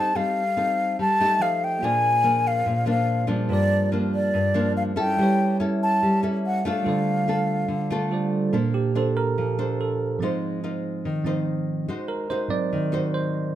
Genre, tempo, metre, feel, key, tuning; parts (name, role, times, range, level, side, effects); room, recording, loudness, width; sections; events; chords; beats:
bossa nova; 143 BPM; 4/4; straight; A4 = 440 Hz
mellow hollow silver concert flute; melody; 0.0-8.3 s; D5 to A5; -23 LUFS; left 1 dB
bell-like tine electric piano; accompaniment; 0.0-13.6 s; Ab2 to Eb5; -26 LUFS; right 4 dB
nylon-string guitar; accompaniment; 0.0-13.5 s; G2 to C5; -26 LUFS; left 1 dB
moderate large studio reverb, RT60 0.8 s; minimal, uncompressed stereo recording; -21 LUFS; side -12 dB against mid
0.0-8.5 A section; 8.5-13.6 B section
tine electric piano solo 8.5-13.6
0.0 F9/G; 1.4 F9; 1.8 Bb7; 3.5 Gm13; 5.2 A7/G; 6.9 Dm7; 8.5 Bbmaj9; 10.2 Ab6; 11.9 Ab7
| 0.15 0.56 0.98 1.40 | 1.82 2.24 2.66 3.08 | 3.50 3.92 4.34 4.76 | 5.18 5.60 6.01 6.43 | 6.85 7.27 7.69 8.11 | 8.53 8.95 9.37 9.78 | 10.20 10.62 11.04 11.46 | 11.88 12.29 12.71 13.13 | 13.55